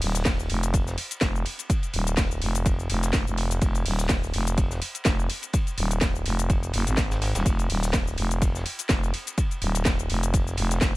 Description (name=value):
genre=bass house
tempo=125 BPM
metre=4/4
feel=swing 56% on 16ths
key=F minor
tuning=A4 = 435 Hz
part: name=growling FM bass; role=bass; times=0.0-10.9 s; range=Eb1 to Ab1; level=-26 LUFS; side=equal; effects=tube saturation, sidechain pumping
part: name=crunchy breakbeat drum kit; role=drums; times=0.0-10.9 s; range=hi-hat, ride cymbal, snare drum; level=-38 LUFS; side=equal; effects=high-pass filter on hats, high-pass filter on cymbals, high-pass filter on snare, high-pass filter on room
part: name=garage drum kit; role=drums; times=0.0-10.9 s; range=cabasa, hi-hat, snare drum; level=-29 LUFS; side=equal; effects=none
part: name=electronic kick drum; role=drums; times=0.3-10.9 s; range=none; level=-25 LUFS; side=equal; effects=overdrive
room=little or no reverb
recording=none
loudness=-23 LUFS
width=side -19 dB against mid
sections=0.0-11.0 A section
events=none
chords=none